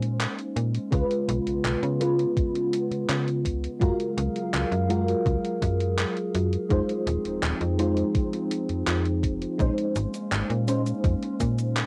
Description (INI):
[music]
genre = vaporwave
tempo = 83 BPM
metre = 4/4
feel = straight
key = Bb minor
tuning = A4 = 440 Hz
[part]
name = mellow FM electric piano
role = accompaniment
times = 0.0-11.9 s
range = Ab3 to C5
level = -31 LUFS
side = equal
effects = phaser, ensemble chorus, vintage 12-bit sampler grit, cassette tape, tape echo
[part]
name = warbly tape-like pad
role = sustained chords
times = 0.0-11.9 s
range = Db3 to F5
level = -32 LUFS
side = equal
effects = chorus, built-in reverb, cassette tape
[part]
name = slap-like FM bass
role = bass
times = 0.0-11.8 s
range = Eb1 to Db3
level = -29 LUFS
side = equal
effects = none
[part]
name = gated 80s digital drum machine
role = drums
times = 0.0-11.9 s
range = cabasa, handclaps, hi-hat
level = -34 LUFS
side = equal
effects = gated reverb, overdrive, cassette tape
[part]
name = electronic kick drum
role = drums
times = 0.9-11.5 s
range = none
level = -29 LUFS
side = equal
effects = overdrive, cassette tape
[sound]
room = little or no reverb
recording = home recording on cassette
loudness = -26 LUFS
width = mono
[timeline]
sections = 0.0-11.9 A section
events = none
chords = 0.0 Bbm11; 0.9 Db7; 3.8 Gbmaj9; 6.7 Fm7; 9.6 Bbm11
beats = 0.20 | 0.92 1.65 2.37 3.09 | 3.81 4.54 5.26 5.98 | 6.71 7.43 8.15 8.87 | 9.60 10.32 11.04 11.77